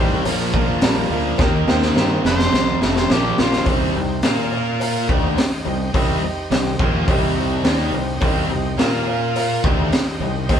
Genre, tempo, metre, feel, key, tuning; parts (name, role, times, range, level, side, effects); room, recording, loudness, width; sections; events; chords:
classic rock; 106 BPM; 4/4; straight; C dorian; A4 = 438 Hz
warm upright piano; accompaniment; 0.0-10.6 s; A3 to G5; -26 LUFS; right 3 dB
bright tonewheel organ; sustained chords; 0.0-10.6 s; A3 to F5; -33 LUFS; equal
raw garage guitar; riff; 0.0-10.6 s; F2 to Bb4; -24 LUFS; left 7 dB; overdrive
sludgy distorted guitar; riff; 0.0-10.6 s; F2 to Bb4; -25 LUFS; right 5 dB; overdrive
growling fingered electric bass; bass; 0.0-10.6 s; F1 to Bb2; -26 LUFS; equal; overdrive
raw garage drum kit; drums; 0.3-10.6 s; hi-hat, kick drum, snare drum; -20 LUFS; equal
cowbell; percussion; 0.3-10.6 s; -34 LUFS; left 2 dB
growling tenor saxophone; melody; 2.3-3.7 s; F4 to C5; -24 LUFS; left 2 dB
moderate large studio reverb, RT60 1.5 s; band playing live in one room; -16 LUFS; side -8 dB against mid
0.0-3.7 A section; 3.7-10.6 B section
tenor saxophone solo 0.0-3.7; drum fill 1.4-3.7; upright piano fill 7.4-8.2
0.3 Bb; 1.4 Eb; 2.3 F; 3.1 Bb; 3.7 Cm; 4.2 Bb5; 5.1 Cm; 8.8 Bb5; 9.6 Cm